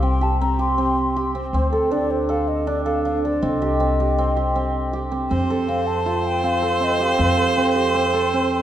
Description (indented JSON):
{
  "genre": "contemporary instrumental, chamber music in an uneven meter",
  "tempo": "159 BPM",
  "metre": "5/4",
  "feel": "straight",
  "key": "unclear",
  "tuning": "A4 = 440 Hz",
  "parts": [
    { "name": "mellow hollow baroque flute", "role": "melody", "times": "0.0-8.1 s", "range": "A4 to C6", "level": "-25 LUFS", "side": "left 2 dB", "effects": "none" },
    { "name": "hammered dulcimer", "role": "arpeggios", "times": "0.0-8.6 s", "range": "C4 to A4", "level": "-21 LUFS", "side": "right 2 dB", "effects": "none" },
    { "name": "upright bass", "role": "bass", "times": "0.0-8.6 s", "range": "C2 to F2", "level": "-25 LUFS", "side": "equal", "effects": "none" },
    { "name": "clear viola", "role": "second line", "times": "5.3-8.6 s", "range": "C5", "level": "-22 LUFS", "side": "right 2 dB", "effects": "none" }
  ],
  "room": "moderate recital hall reverb, RT60 1.3 s",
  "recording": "dark, warm production",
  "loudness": "-18 LUFS",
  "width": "side -11 dB against mid",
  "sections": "0.0-5.3 A section; 5.3-8.6 B section",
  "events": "none",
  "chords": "0.0 C5; 1.5 D5; 3.4 Cm; 5.3 F"
}